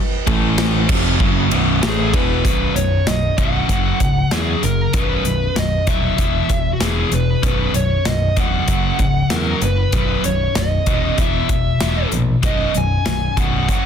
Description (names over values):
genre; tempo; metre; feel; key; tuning
hard rock; 96 BPM; 4/4; straight; B major; A4 = 441 Hz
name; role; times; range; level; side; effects
distorted electric guitar; riff; 0.3-2.4 s; B1 to A3; -24 LUFS; right 1 dB; distortion
scooped high-gain guitar; riff; 0.3-13.9 s; B1 to A3; -22 LUFS; left 9 dB; distortion
sludgy distorted guitar; riff; 0.3-13.9 s; B1 to A3; -23 LUFS; right 11 dB; overdrive
modern bright picked electric bass; bass; 0.3-13.9 s; B0 to E2; -21 LUFS; equal; none
big rock drum kit; drums; 0.3-13.8 s; crash cymbal, hi-hat, kick drum, ride cymbal, snare drum; -21 LUFS; equal; soft clipping on snare
bluesy overdriven lead guitar; melody; 1.8-13.9 s; F#4 to G#5; -22 LUFS; left 1 dB; distortion
room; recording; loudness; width
studio ambience; dense, heavily limited modern master; -15 LUFS; side -8 dB against mid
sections
0.0-2.4 A section; 2.4-13.9 B section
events
none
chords
0.3 A5; 0.9 B5; 3.7 F#5; 4.9 B; 6.2 E5; 7.4 B5; 8.7 F#5; 9.9 B; 11.2 E5; 12.4 B5